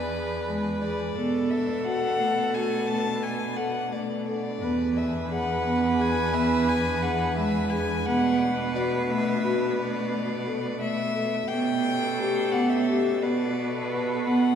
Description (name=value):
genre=contemporary instrumental, chamber music in an uneven meter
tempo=174 BPM (eighths)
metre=5/8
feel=straight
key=B dorian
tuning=A4 = 439 Hz
part: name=warm violin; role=melody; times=0.0-14.6 s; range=D5 to A5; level=-30 LUFS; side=left 4 dB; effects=none
part: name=clear viola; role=second line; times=0.0-14.6 s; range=A4 to B4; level=-31 LUFS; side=right 2 dB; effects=none
part: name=dark symphonic string section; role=sustained chords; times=0.0-14.6 s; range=E3 to A4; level=-35 LUFS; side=equal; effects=none
part: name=marimba with soft mallets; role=arpeggios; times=0.0-14.6 s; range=G#3 to B4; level=-26 LUFS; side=equal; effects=none
part: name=clear cello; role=bass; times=0.0-14.6 s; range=E2 to B2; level=-32 LUFS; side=right 3 dB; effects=none
room=wet church reverb, RT60 3.4 s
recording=recorded in a church or concert hall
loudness=-23 LUFS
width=side -8 dB against mid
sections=0.0-11.5 A section; 11.5-14.6 B section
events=none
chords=0.0 E7; 1.2 Bm7; 4.6 E7; 8.1 Bm7; 11.5 A9/B; 13.2 Bm7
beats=0.13 0.47 0.82 | 1.16 1.51 1.85 2.20 2.54 | 2.89 3.23 3.58 3.92 4.27 | 4.61 4.96 5.30 5.65 5.99 | 6.34 6.68 7.03 7.37 7.72 | 8.06 8.41 8.75 9.10 9.44 | 9.79 10.13 10.47 10.82 11.16 | 11.51 11.85 12.20 12.54 12.89 | 13.23 13.58 13.92 14.27